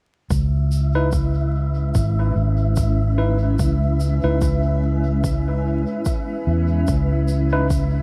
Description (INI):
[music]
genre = ambient dub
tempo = 73 BPM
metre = 4/4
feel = swing 57% on 16ths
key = C# minor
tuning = A4 = 444 Hz
[part]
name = granular cloud pad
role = sustained chords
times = 1.6-8.0 s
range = G#3 to E5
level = -29 LUFS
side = equal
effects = built-in reverb
[part]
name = fingered electric bass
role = bass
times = 0.3-8.0 s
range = G#1 to E2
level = -21 LUFS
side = equal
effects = none
[part]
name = electronic kick drum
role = drums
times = 0.3-7.9 s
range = none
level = -26 LUFS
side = equal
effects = none
[part]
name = shaker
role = drums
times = 0.3-7.9 s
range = none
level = -44 LUFS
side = equal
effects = dub echo
[part]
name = wind-like tuned noise texture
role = texture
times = 0.5-8.0 s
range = E4 to E5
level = -33 LUFS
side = equal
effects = built-in reverb
[part]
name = tine electric piano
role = stabs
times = 1.0-7.7 s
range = D#4 to B4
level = -30 LUFS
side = equal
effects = vintage 12-bit sampler grit, dub echo
[sound]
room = little or no reverb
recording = vinyl crackle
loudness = -20 LUFS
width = mono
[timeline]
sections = 0.3-8.0 A section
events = none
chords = 0.3 C#m7